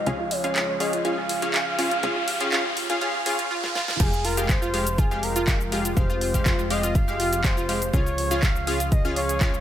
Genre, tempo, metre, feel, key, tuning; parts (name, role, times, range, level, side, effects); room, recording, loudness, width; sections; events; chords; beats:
progressive house; 122 BPM; 4/4; straight; F minor; A4 = 437 Hz
expressive portamento lead; melody; 0.0-9.6 s; Ab4 to F5; -29 LUFS; equal; chorus, sidechain pumping, dub echo
lush unison pad; sustained chords; 0.0-9.6 s; C3 to Ab4; -34 LUFS; equal; chorus, sidechain pumping
tight sequencer bass; bass; 0.0-9.6 s; F1 to Db2; -30 LUFS; equal; sidechain pumping
riser; sound effects; 0.0-4.0 s; -32 LUFS; equal
analog pluck; arpeggios; 0.1-9.6 s; F4; -30 LUFS; right 1 dB; chorus, sidechain pumping, dub echo
supersaw stab; stabs; 0.1-9.5 s; Ab3 to F5; -29 LUFS; left 1 dB; sidechain pumping, low-pass filter, dub echo
big-room dance drum kit; drums; 0.1-9.6 s; cabasa, crash cymbal, handclaps, hi-hat, snare drum; -28 LUFS; equal; sidechain pumping on perc, sidechain pumping on hats, sidechain pumping on cymbals
electronic kick drum; drums; 4.0-9.5 s; -22 LUFS; equal
moderate lush hall reverb, RT60 2.0 s; high-pass filter; -21 LUFS; side -11 dB against mid
0.0-4.0 A section; 4.0-9.6 B section
build-up 0.0-4.0; riser 0.0-4.0; filter sweep on synth pluck 0.0-4.0; filter sweep on analog synth lead 0.0-4.0; filter sweep 0.0-4.0; drum fill 3.6-4.0; drop 4.0-9.6
0.1 Db; 4.0 Fmadd9; 7.9 Db
| 0.07 0.56 1.05 1.54 | 2.03 2.52 3.02 3.51 | 4.00 4.49 4.98 5.48 | 5.97 6.46 6.95 7.44 | 7.93 8.43 8.92 9.41